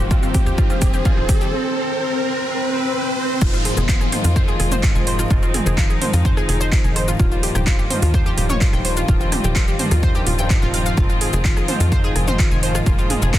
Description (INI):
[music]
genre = melodic techno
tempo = 127 BPM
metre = 4/4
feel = straight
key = F minor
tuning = A4 = 440 Hz
[part]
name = expressive synth lead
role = melody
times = 0.0-3.4 s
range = C4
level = -24 LUFS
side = equal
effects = ensemble chorus, cassette tape, digital delay
[part]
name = rich chamber string section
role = sustained chords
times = 0.0-13.4 s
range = Eb3 to F4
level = -28 LUFS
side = left 1 dB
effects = sidechain pumping
[part]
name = analog pluck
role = arpeggios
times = 0.0-13.4 s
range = C4 to Ab5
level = -27 LUFS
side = equal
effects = chorus, cassette tape, sidechain pumping, digital delay
[part]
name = analog synth brass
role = stabs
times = 0.0-13.4 s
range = G2 to F3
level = -26 LUFS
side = left 1 dB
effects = chorus, cassette tape, sidechain pumping, digital delay
[part]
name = tight sequencer bass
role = bass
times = 0.0-13.4 s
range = Eb1 to F2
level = -22 LUFS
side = equal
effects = sidechain pumping
[part]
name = riser and downlifter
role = sound effects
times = 0.0-7.2 s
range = none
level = -27 LUFS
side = right 1 dB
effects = none
[part]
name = electronic kick drum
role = drums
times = 0.1-13.4 s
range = none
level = -18 LUFS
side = equal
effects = none
[part]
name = house drum kit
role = drums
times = 0.1-13.4 s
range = crash cymbal, handclaps, hi-hat, rim click, shaker, toms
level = -25 LUFS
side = right 1 dB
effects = sidechain pumping on perc, sidechain pumping on hats, sidechain pumping on toms, sidechain pumping on cymbals
[sound]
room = little or no reverb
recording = dense, heavily limited modern master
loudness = -16 LUFS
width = side -13 dB against mid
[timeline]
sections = 0.0-3.4 A section; 3.4-13.4 B section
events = build-up 0.0-3.4; drum fill 0.0-1.5; riser 0.0-3.4; break 1.5-3.4; drop 3.4-13.4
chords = 0.0 Ebadd9; 3.4 Fm7; 7.2 Ebadd9; 11.0 Fm7